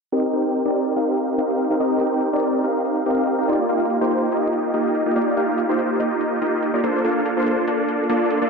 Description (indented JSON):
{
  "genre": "future bass",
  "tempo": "143 BPM",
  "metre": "4/4",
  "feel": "swing 53% on 16ths, half-time",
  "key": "unclear",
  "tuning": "A4 = 440 Hz",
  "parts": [
    { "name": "supersaw chords", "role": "riff", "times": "0.1-8.5 s", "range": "Bb3 to G5", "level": "-18 LUFS", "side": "equal", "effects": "low-pass filter, tape echo" },
    { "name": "electronic hi-hat", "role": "drums", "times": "0.1-8.4 s", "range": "none", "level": "-45 LUFS", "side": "right 1 dB", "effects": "none" }
  ],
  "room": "moderate huge ambient reverb, RT60 5.8 s",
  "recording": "low-pass filter",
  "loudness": "-18 LUFS",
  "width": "side -4 dB against mid",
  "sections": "0.1-8.5 A section",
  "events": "filter sweep 0.1-8.5",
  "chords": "0.1 Cm7; 3.5 Ebmaj9; 6.8 Bbmaj9"
}